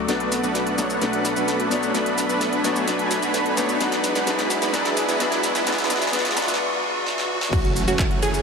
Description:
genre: EDM, festival progressive house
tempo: 129 BPM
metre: 4/4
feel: straight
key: unclear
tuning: A4 = 440 Hz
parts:
  - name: clear grand piano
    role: accompaniment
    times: 0.0-7.5 s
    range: B2 to F#4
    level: -26 LUFS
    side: left 5 dB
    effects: sidechain pumping, dub echo
  - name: lush unison pad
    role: sustained chords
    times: 0.0-7.5 s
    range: G#4 to C#6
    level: -28 LUFS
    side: right 1 dB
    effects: chorus, sidechain pumping
  - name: saturated sub bass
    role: bass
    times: 0.0-8.4 s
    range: E1 to B1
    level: -36 LUFS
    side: equal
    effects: sidechain pumping
  - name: riser and impact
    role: sound effects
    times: 0.0-8.4 s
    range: none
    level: -29 LUFS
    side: equal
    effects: none
  - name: supersaw chords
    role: riff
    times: 0.1-8.4 s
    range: E3 to C#5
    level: -24 LUFS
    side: right 2 dB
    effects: sidechain pumping, low-pass filter, dub echo
  - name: pop drum kit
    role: drums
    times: 0.1-8.4 s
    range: crash cymbal, handclaps, hi-hat, shaker, snare drum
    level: -27 LUFS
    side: equal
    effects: high-pass filter on snare, small room reverb, high-pass filter on hats, high-pass filter on perc, high-pass filter on cymbals
  - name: wide unison pluck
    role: arpeggios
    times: 7.5-8.4 s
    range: F#4 to G#4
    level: -26 LUFS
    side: right 2 dB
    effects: sidechain pumping, dub echo
  - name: electronic kick drum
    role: drums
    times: 7.5-8.1 s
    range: none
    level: -23 LUFS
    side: equal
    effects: overdrive, small room reverb
room: moderate huge ambient reverb, RT60 6.5 s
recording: high-pass filter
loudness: -19 LUFS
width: side -5 dB against mid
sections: 0.0-7.5 A section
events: build-up 0.0-7.5; drum fill 0.0-6.6, 7.1-7.5; riser 0.0-7.5; filter sweep on supersaw synth 0.0-7.5; filter sweep 0.0-7.5; break 6.6-7.5; impact 7.5-8.4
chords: 0.1 Bm7; 3.8 E; 7.5 F#m7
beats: | 0.09 0.55 1.02 1.48 | 1.95 2.41 2.88 3.34 | 3.81 4.27 4.74 5.20 | 5.67 6.13 6.60 7.06 | 7.53 7.99

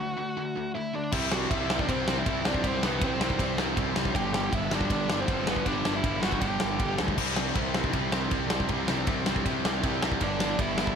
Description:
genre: punk rock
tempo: 158 BPM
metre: 4/4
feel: straight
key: unclear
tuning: A4 = 440 Hz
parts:
  - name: bluesy overdriven lead guitar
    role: melody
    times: 0.0-7.0, 10.2-11.0 s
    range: B3 to G5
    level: -32 LUFS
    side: right 1 dB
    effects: distortion, digital delay
  - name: cranked stack guitar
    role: riff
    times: 0.0-11.0 s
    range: G2 to C4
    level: -34 LUFS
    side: left 13 dB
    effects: overdrive
  - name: cranked stack guitar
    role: riff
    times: 0.0-11.0 s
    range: G2 to C4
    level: -33 LUFS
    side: right 13 dB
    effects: overdrive
  - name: thick fuzz guitar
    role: riff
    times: 1.1-11.0 s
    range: G2 to C4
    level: -37 LUFS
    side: equal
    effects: none
  - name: fuzz picked electric bass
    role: bass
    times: 1.1-10.9 s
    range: G1 to D2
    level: -34 LUFS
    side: equal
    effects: overdrive
  - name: big rock drum kit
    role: drums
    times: 1.1-11.0 s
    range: crash cymbal, kick drum, ride cymbal, snare drum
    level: -29 LUFS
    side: equal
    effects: none
room: light reverb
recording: none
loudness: -25 LUFS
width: side -7 dB against mid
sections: 0.0-1.1 A section; 1.1-11.0 B section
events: break 0.0-1.1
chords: 0.0 D; 1.1 C; 4.1 G5; 7.2 C5; 10.2 G5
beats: 0.37 0.74 | 1.12 1.50 1.88 2.26 | 2.63 3.01 3.39 3.77 | 4.15 4.53 4.90 5.28 | 5.66 6.04 6.42 6.80 | 7.18 7.56 7.94 8.32 | 8.70 9.07 9.45 9.83 | 10.21 10.59

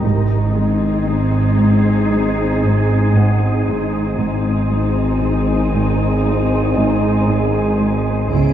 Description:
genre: cinematic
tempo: 58 BPM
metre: 4/4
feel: straight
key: unclear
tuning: A4 = 441 Hz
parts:
  - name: dark symphonic viola section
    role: accompaniment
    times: 0.0-8.5 s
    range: Cb4 to Fb4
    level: -21 LUFS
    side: left 1 dB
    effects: none
  - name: wind-like tuned noise texture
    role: sustained chords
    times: 0.0-8.5 s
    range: Ab4 to Eb5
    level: -23 LUFS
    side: right 2 dB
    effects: built-in reverb
  - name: warm symphonic cello section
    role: riff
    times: 0.0-8.5 s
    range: Ab2 to Ab3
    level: -22 LUFS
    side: right 2 dB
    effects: none
  - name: rich symphonic double bass section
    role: bass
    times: 0.0-8.5 s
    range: Ab1 to Db2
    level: -26 LUFS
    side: right 2 dB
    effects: none
  - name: felt-muted upright piano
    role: texture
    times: 0.0-8.5 s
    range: Eb4 to Gb5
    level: -28 LUFS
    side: right 1 dB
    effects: none
  - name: warm symphonic cello section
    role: bass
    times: 0.1-8.5 s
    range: Ab2 to Db3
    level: -20 LUFS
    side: right 2 dB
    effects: none
  - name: analog drone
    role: drone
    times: 0.1-8.5 s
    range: Ab1 to Db2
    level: -19 LUFS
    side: left 1 dB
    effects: chorus
  - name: warm symphonic violin section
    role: texture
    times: 8.3-8.5 s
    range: Db5 to D7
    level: -41 LUFS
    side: left 6 dB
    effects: none
room: moderate scoring stage reverb, RT60 2.0 s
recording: dark, warm production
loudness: -14 LUFS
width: side -10 dB against mid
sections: 0.0-8.5 A section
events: none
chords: 0.0 Ab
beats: | 0.04 1.07 2.11 3.14 | 4.18 5.21 6.25 7.28 | 8.31

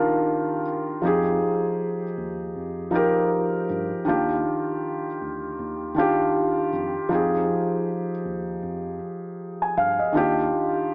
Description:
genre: lo-fi hip hop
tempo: 79 BPM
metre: 4/4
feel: swing 60% on 16ths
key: F dorian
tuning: A4 = 441 Hz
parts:
  - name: felt-muted upright piano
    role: accompaniment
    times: 0.0-10.9 s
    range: Eb3 to Ab5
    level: -25 LUFS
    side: equal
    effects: cassette tape
  - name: mellow tine electric piano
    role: bass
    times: 1.0-10.5 s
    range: D2 to G2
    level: -37 LUFS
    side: equal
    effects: none
room: moderate plate reverb, RT60 3.5 s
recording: cassette tape, small speaker sound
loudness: -25 LUFS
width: mono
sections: 0.0-10.9 A section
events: break 0.0-1.0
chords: 0.0 Ebmaj9; 1.0 Fm9; 4.1 Ebmaj9; 7.1 Fm9; 10.1 Ebmaj9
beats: 0.27 | 1.03 1.79 2.55 3.31 | 4.07 4.83 5.59 6.35 | 7.11 7.87 8.63 9.39 | 10.15 10.91

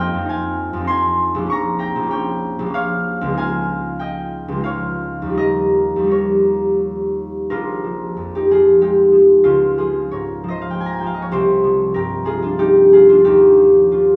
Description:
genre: classical, solo harp piece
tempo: 81-100 BPM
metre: 3/4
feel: rubato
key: Bb dorian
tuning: A4 = 443 Hz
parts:
  - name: concert harp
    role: solo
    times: 0.0-14.2 s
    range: Bb1 to Db6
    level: -16 LUFS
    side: equal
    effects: none
room: moderate recital hall reverb, RT60 1.7 s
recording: small room ambience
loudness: -16 LUFS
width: mono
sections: 0.0-7.5 A section; 7.5-14.2 B section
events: none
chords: 0.0 Fm7; 1.5 Bbm6; 3.4 Dbadd9; 5.4 Eb9; 7.5 Bbm7; 9.4 Db69; 11.3 Cm11; 13.2 Eb9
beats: 0.29 0.90 | 1.50 2.11 2.74 | 3.37 4.00 4.66 | 5.36 6.10 6.81 | 7.50 8.15 8.79 | 9.43 10.11 10.73 | 11.33 11.94 12.58 | 13.24 13.91

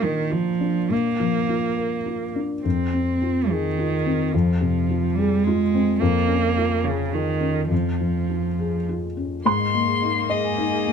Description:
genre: neoclassical piano and strings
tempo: 106 BPM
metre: 3/4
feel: rubato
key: unclear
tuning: A4 = 440 Hz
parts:
  - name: rich cello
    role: second line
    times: 0.0-10.9 s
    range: Db3 to C4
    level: -23 LUFS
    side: right 6 dB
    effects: none
  - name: felt-muted upright piano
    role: accompaniment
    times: 0.0-10.9 s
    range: F2 to C6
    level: -23 LUFS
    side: left 4 dB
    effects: none
  - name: rich violin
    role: melody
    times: 9.5-10.9 s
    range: Eb5 to C6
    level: -24 LUFS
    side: left 9 dB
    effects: none
  - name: vibraphone with medium mallets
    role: arpeggios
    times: 9.5-10.9 s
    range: Ab4 to Ab5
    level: -30 LUFS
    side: right 8 dB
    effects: slapback echo
room: light reverb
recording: none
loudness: -20 LUFS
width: side -6 dB against mid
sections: 0.0-9.5 A section; 9.5-10.9 A section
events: none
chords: 0.0 Bb; 2.6 Fm; 6.0 Db/F; 9.5 Abadd9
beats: 0.32 | 0.91 1.49 2.07 | 2.65 3.21 3.77 | 4.33 4.89 5.44 | 6.00 6.56 7.12 | 7.71 8.29 8.88 | 9.46 10.03 10.59

